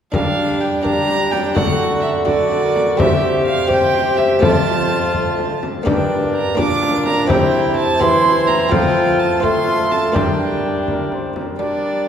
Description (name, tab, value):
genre	classical, renaissance-style consort dance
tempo	84 BPM (dotted quarters)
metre	6/8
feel	straight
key	G dorian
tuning	A4 = 440 Hz
part	mellow cornet	melody	0.1-12.1 s	G4 to C5	-27 LUFS	left 2 dB	none
part	warm violin	second line	0.1-12.1 s	D5 to D6	-20 LUFS	right 2 dB	none
part	buff-stop harpsichord	accompaniment	0.1-12.1 s	F2 to C5	-24 LUFS	left 1 dB	none
part	rich viola	accompaniment	0.1-12.1 s	D4 to G4	-22 LUFS	equal	none
part	mellow bassoon	bass	0.1-12.1 s	F2 to A3	-20 LUFS	equal	none
part	frame drum	percussion	0.1-11.6 s	none	-22 LUFS	left 1 dB	none
room	wet church reverb, RT60 3.6 s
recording	heard from further back in the room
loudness	-14 LUFS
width	side -8 dB against mid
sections	0.1-11.6 A section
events	none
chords	0.1 Gm; 1.6 D; 3.0 C; 4.4 F; 5.9 Gm; 7.3 C; 8.7 F; 10.2 Gm